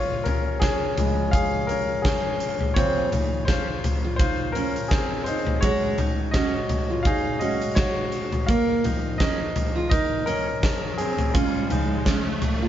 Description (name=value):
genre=piano-driven pop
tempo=84 BPM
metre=4/4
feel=swing 56% on 16ths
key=unclear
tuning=A4 = 440 Hz
part: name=warm concert grand piano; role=accompaniment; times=0.0-12.7 s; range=Bb2 to F5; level=-25 LUFS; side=left 1 dB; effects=none
part: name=huge arena drum kit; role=drums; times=0.3-12.6 s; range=hi-hat, kick drum, snare drum, toms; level=-24 LUFS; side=equal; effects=none
part: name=fingerpicked steel-string acoustic guitar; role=riff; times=2.8-12.7 s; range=Ab3 to F4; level=-27 LUFS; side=right 3 dB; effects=none
part: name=riser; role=sound effects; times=10.2-12.7 s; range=none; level=-33 LUFS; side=right 1 dB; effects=none
room=moderate studio reverb, RT60 0.9 s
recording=band playing live in one room, nothing above 7.6 kHz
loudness=-21 LUFS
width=side -11 dB against mid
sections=0.0-12.7 A section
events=grand piano solo 0.0-12.7; riser 10.2-12.7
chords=0.0 Db; 2.8 Bbmadd9; 5.6 Gbsus2; 8.5 Ebsus2; 11.3 Db